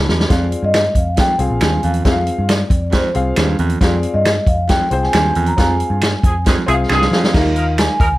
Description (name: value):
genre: uptempo 1960s-style soul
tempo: 136 BPM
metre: 4/4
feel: straight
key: unclear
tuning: A4 = 440 Hz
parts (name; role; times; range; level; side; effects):
- warm upright piano; accompaniment; 0.0-8.0 s; Eb3 to Cb6; -22 LUFS; left 3 dB; plate reverb
- warm baritone saxophone; riff; 0.0-7.5 s; Eb2 to G2; -21 LUFS; right 4 dB; none
- vintage muted picked electric bass; bass; 0.0-8.2 s; Bb1 to F3; -19 LUFS; equal; none
- vintage drum kit; drums; 0.1-8.1 s; crash cymbal, hi-hat, kick drum, snare drum; -17 LUFS; equal; none
- vibraphone with soft mallets; melody; 0.3-8.2 s; C5 to Bb5; -20 LUFS; equal; slapback echo, plate reverb
- finger snaps; percussion; 0.7-7.9 s; none; -24 LUFS; right 3 dB; none
- warm horn section; second line; 6.2-8.1 s; F3 to Bb4; -20 LUFS; right 1 dB; plate reverb
room: light reverb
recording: vinyl crackle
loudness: -13 LUFS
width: side -17 dB against mid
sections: 0.3-7.3 A section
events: drum fill 0.0-0.3, 6.9-7.3; upright piano fill 0.0-0.3; band accent 5.6-7.3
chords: 0.3 Fm; 7.3 Ebsus2